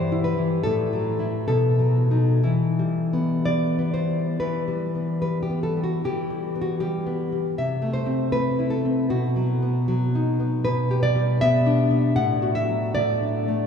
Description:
romantic piece for solo classical guitar; 58-80 BPM; 2/4; rubato; E minor, G major from 10.7 s; A4 = 441 Hz
nylon-string guitar; solo; 0.0-13.7 s; G2 to F#5; -20 LUFS; left 1 dB
wet cathedral reverb, RT60 5.3 s; in a vast, echoing space, small room ambience; -20 LUFS; side -7 dB against mid
0.0-4.4 A section; 4.4-13.7 A section
0.0 Em/G; 0.6 F#m7/A; 1.5 B7; 2.4 Em; 7.6 Am/C; 9.1 B; 10.7 G/B; 12.2 D/A

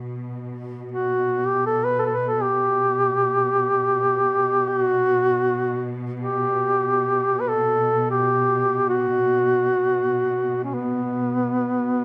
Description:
caucasian folk, Caucasian lament; free time; A4 = 440 Hz
rich studio cello section; drone; 0.0-12.0 s; B2; -32 LUFS; equal
mellow duduk; melody; 0.9-12.0 s; B3 to B4; -22 LUFS; equal
light reverb; close, detailed microphones; -21 LUFS; mono
0.0-12.0 A section

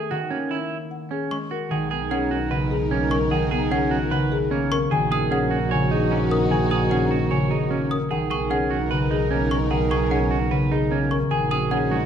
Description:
classical, minimalist pattern music; 150 BPM; 4/4; straight; B major; A4 = 440 Hz
marimba with soft mallets; melody; 0.0-12.0 s; G#4 to G#5; -29 LUFS; left 8 dB
concert harp; accompaniment; 0.0-12.1 s; C#3 to C#4; -26 LUFS; left 1 dB
clean electric guitar; arpeggios; 0.0-12.1 s; C#4 to C#5; -26 LUFS; right 5 dB
trough xylophone with plastic mallets; arpeggios; 1.3-12.0 s; F#5 to D#6; -31 LUFS; left 2 dB
hollow alto flute; second line; 1.7-12.1 s; D#4 to F#4; -31 LUFS; right 5 dB
warm symphonic violin section; sustained chords; 1.7-12.1 s; D#4 to A#4; -31 LUFS; left 4 dB
clear double bass; bass; 1.7-12.1 s; A#1 to B1; -27 LUFS; right 2 dB
wet recital hall reverb, RT60 1.4 s; dark, warm production; -20 LUFS; side -8 dB against mid
0.0-1.7 A section; 1.7-12.1 B section
0.1 F#13; 1.7 Bmaj9; 4.9 D#m7/A#; 8.1 Bmaj9; 11.3 D#m7/A#

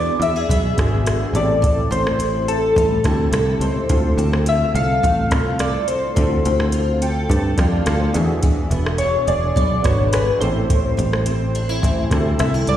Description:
indie pop, bedroom pop; 106 BPM; 4/4; straight; D minor; A4 = 441 Hz
soft electric-piano-like synth keys; melody; 0.0-12.8 s; A4 to F5; -21 LUFS; left 1 dB; phaser, analog chorus, slapback echo, ping-pong delay
picked steel-string acoustic guitar; accompaniment; 0.0-12.8 s; A2 to A4; -27 LUFS; left 3 dB; analog chorus, vibrato effect, slapback echo
warm analog keys; accompaniment; 0.0-12.8 s; B3 to A5; -26 LUFS; right 4 dB; chorus, cassette tape, slapback echo
picked electric bass; bass; 0.0-12.8 s; E1 to G2; -20 LUFS; equal
soft vintage rhythm box; drums; 0.2-12.8 s; hi-hat, kick drum, rim click; -22 LUFS; equal
light reverb; live gig heard through the venue's PA, recital hall reverb; -16 LUFS; side -11 dB against mid
0.0-12.8 A section
synth keys fill 6.7-8.4
0.0 E7; 1.3 Am7; 3.9 Dm7; 8.1 E7; 10.4 Am7

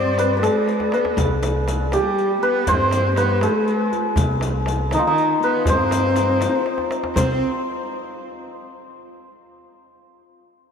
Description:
Persian modal ensemble; 80 BPM (dotted quarters); 6/8; straight; C avaz esfahan; A4 = 439 Hz
santur; melody; 0.0-8.7 s; Eb4 to D5; -21 LUFS; equal; ping-pong delay
breathy mellow ney; second line; 0.0-7.4 s; Eb4 to D5; -26 LUFS; left 5 dB; ping-pong delay
rich cello; second line; 0.0-7.4 s; Eb3 to C4; -26 LUFS; right 3 dB
upright bass; bass; 0.0-7.4 s; C2 to G2; -23 LUFS; equal
riq; percussion; 0.2-7.4 s; -34 LUFS; left 6 dB
tombak; percussion; 0.2-7.4 s; -27 LUFS; equal
frame drum; percussion; 1.2-7.4 s; -30 LUFS; left 1 dB
wet huge ambient reverb, RT60 4.2 s; dreamy mix soaked in reverb; -17 LUFS; side -7 dB against mid
0.0-7.2 A section; 7.2-8.7 B section
drum fill 0.7-1.2, 6.7-7.2

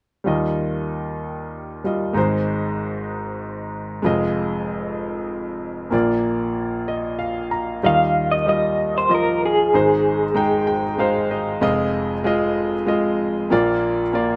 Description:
acoustic folk-pop ballad; 95 BPM; 3/4; straight; Eb major; A4 = 440 Hz
clear baby grand piano; accompaniment; 0.2-14.4 s; F1 to Bb5; -22 LUFS; equal
electric guitar through a small old amp; melody; 7.9-11.3 s; Ab4 to F5; -21 LUFS; equal; tremolo
moderate studio reverb, RT60 0.7 s; dark, warm production; -21 LUFS; mono
0.3-7.8 A section; 7.8-14.4 B section
0.3 Ebadd9; 2.2 Ab; 4.0 Fm7; 5.9 Bb; 7.8 Ebadd9; 9.7 Ab; 11.6 Fm7; 13.5 Bb

